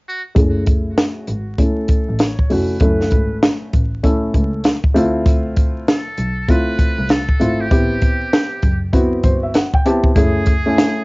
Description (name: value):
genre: hip hop, jazz-hop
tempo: 98 BPM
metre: 4/4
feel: swing 63% on 16ths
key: F# minor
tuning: A4 = 440 Hz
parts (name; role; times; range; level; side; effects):
- trumpet with metal mute; melody; 0.1-11.0 s; E4 to C#5; -26 LUFS; right 1 dB; low-pass filter, cassette tape, analog delay
- dark grand piano; accompaniment; 0.3-11.0 s; A3 to A5; -18 LUFS; equal; low-pass filter, cassette tape, plate reverb
- rich double bass; bass; 0.4-10.7 s; E#1 to D2; -23 LUFS; equal; none
- compact cocktail drum kit; drums; 0.4-11.0 s; hi-hat, kick drum, snare drum; -15 LUFS; equal; cassette tape
room: light reverb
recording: home recording on cassette, vinyl crackle, nothing above 7.5 kHz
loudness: -14 LUFS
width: side -26 dB against mid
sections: 0.4-10.2 A section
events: filter sweep 0.4-10.2; grand piano fill 8.9-10.2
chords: 0.4 F#m9; 5.0 Dm9; 7.7 Am9; 10.2 F#m9